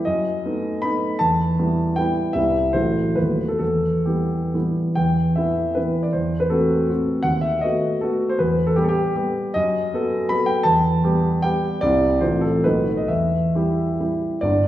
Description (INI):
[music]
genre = classical, romantic triple-time dance for piano with dotted rhythms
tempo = 123-169 BPM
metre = 3/4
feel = rubato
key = E minor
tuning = A4 = 442 Hz
[part]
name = warm grand piano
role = solo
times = 0.0-14.7 s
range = G1 to B5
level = -18 LUFS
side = equal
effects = none
[sound]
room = wet recital hall reverb, RT60 1.6 s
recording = heard from further back in the room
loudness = -18 LUFS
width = side -13 dB against mid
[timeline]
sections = 0.0-5.0 A section; 5.0-14.4 A section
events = none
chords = 0.1 B7/F#; 1.2 Em; 2.3 Cmaj7; 2.7 F#m7b5/A; 3.2 B7/D#; 3.6 Em; 6.1 F#m7b5/E; 7.3 B7/D#; 8.4 Em; 9.6 B7/F#; 10.7 Em; 11.8 C; 12.2 F/A; 12.6 B7; 13.1 Em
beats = | 0.06 0.44 0.83 | 1.20 1.59 1.97 | 2.34 2.74 3.17 | 3.61 4.08 4.54 | 4.97 5.38 5.77 | 6.14 6.51 6.89 | 7.25 7.63 8.02 | 8.38 8.76 9.15 | 9.55 9.93 10.30 | 10.66 11.04 11.43 | 11.82 12.21 12.64 | 13.09 13.55 14.00 | 14.43